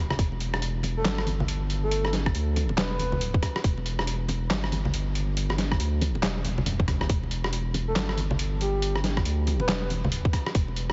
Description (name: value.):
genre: deep dubstep.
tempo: 139 BPM.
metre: 4/4.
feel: swing 61% on 16ths, half-time.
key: E phrygian.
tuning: A4 = 442 Hz.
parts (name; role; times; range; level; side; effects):
saturated sub bass; bass; 0.0-10.9 s; E1 to D2; -30 LUFS; equal; tube saturation.
trip hop sampler-style drum kit; drums; 0.1-10.9 s; handclaps, hi-hat, rim click, snare drum, toms; -32 LUFS; equal; none.
congas; percussion; 0.1-10.7 s; none; -36 LUFS; equal; none.
electronic kick drum; drums; 0.2-10.7 s; none; -27 LUFS; equal; overdrive.
breathy flute-like synth lead; melody; 1.0-3.2, 7.9-9.9 s; G4 to B4; -36 LUFS; equal; chorus, dub echo.
room: light reverb.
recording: heavily compressed radio sound, multiband compression, nothing above 7.8 kHz.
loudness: -27 LUFS.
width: mono.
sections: 0.0-10.9 A section.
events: drum fill 6.4-7.1.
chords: 0.0 Em.